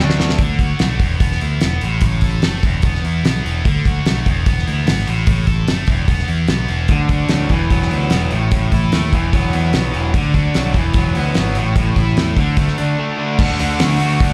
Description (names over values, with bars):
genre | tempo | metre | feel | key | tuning
classic rock | 148 BPM | 4/4 | straight | unclear | A4 = 440 Hz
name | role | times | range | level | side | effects
crunchy overdriven guitar | riff | 0.0-0.4, 6.9-14.3 s | A2 to F#4 | -23 LUFS | equal | slapback echo
tight distorted guitar | riff | 0.0-14.3 s | E2 to A4 | -26 LUFS | equal | distortion
growling picked electric bass | bass | 0.0-14.3 s | E1 to D3 | -21 LUFS | equal | overdrive
damped 70s drum kit | drums | 0.1-14.3 s | crash cymbal, hi-hat, kick drum, snare drum | -20 LUFS | equal | none
room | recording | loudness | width
little or no reverb | live gig heard through the venue's PA, club reverb | -17 LUFS | mono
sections
0.4-13.4 A section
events
drum fill 0.0-0.4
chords
0.0 D5; 0.4 D; 1.0 E5; 1.8 F#m; 2.6 E5; 3.7 D; 4.3 E5; 5.1 F#m; 5.9 E5; 6.9 D; 7.5 Esus2; 8.3 A5; 9.1 Esus2; 10.1 D; 10.8 Esus2; 11.6 A5; 12.4 D5; 13.4 D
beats
| 0.39 0.80 1.21 1.62 | 2.02 2.43 2.84 3.25 | 3.65 4.06 4.46 4.87 | 5.28 5.68 6.09 6.49 | 6.90 7.30 7.71 8.12 | 8.52 8.93 9.33 9.74 | 10.15 10.55 10.96 11.37 | 11.77 12.18 12.59 12.99 | 13.40 13.80 14.21